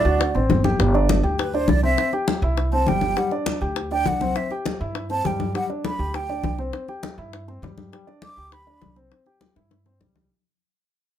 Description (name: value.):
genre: Afro-Cuban jazz.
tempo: 202 BPM.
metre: 4/4.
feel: straight.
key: G major.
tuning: A4 = 440 Hz.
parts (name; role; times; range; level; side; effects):
breathy concert flute; melody; 0.0-9.0 s; B4 to D6; -25 LUFS; right 2 dB; none.
breathy tenor saxophone; second line; 0.0-0.5 s; D4; -25 LUFS; right 7 dB; none.
upright bass; bass; 0.0-10.3 s; G1 to G2; -24 LUFS; right 1 dB; none.
warm concert grand piano; accompaniment; 0.1-10.3 s; G3 to G5; -26 LUFS; equal; none.
bongos; percussion; 0.2-10.2 s; none; -29 LUFS; left 6 dB; none.
congas; percussion; 0.2-10.3 s; none; -27 LUFS; left 3 dB; none.
room: light reverb.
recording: none.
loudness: -20 LUFS.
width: side -10 dB against mid.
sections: 0.8-10.3 A section.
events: fade-out 0.8-10.3; flute solo 0.8-10.3; drum fill 9.6-10.3.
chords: 0.2 D7; 0.8 G5; 2.0 C; 3.2 G5; 4.4 C; 5.5 G; 6.7 C; 7.9 G; 9.1 C.